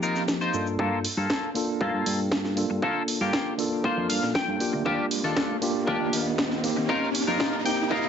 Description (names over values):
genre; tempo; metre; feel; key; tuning
nu-disco, nu disco; 118 BPM; 4/4; straight; G minor; A4 = 441 Hz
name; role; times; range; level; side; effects
tine electric piano; accompaniment; 0.0-8.1 s; G2 to A4; -28 LUFS; right 1 dB; medium stereo tremolo, sidechain pumping, dub echo
clean electric guitar; riff; 0.0-8.1 s; Bb3 to G5; -28 LUFS; left 2 dB; analog chorus, low-pass filter, dub echo
house drum kit; drums; 0.0-7.8 s; cabasa, hi-hat, snare drum; -29 LUFS; equal; overdrive
fingered electric bass with an envelope filter; bass; 0.8-7.4 s; D2 to Bb2; -31 LUFS; equal; sidechain pumping, high-pass filter
electronic kick drum; drums; 0.8-8.0 s; none; -33 LUFS; equal; overdrive, high-pass filter on kick, high-pass filter on room
riser; sound effects; 2.3-8.1 s; none; -33 LUFS; right 1 dB; none
room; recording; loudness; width
light reverb; nothing above 7.8 kHz; -23 LUFS; side -7 dB against mid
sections
0.8-8.1 A section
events
build-up 0.8-8.1; filter sweep on clean electric guitar 0.8-8.1; riser 2.3-8.1; clean electric guitar fill 3.8-4.9, 7.4-8.1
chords
0.0 F7sus4; 0.8 Gm9; 4.9 Ebmaj9; 6.9 F7sus4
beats
0.28 | 0.79 1.30 1.81 2.32 | 2.83 3.33 3.84 4.35 | 4.86 5.37 5.88 6.38 | 6.89 7.40 7.91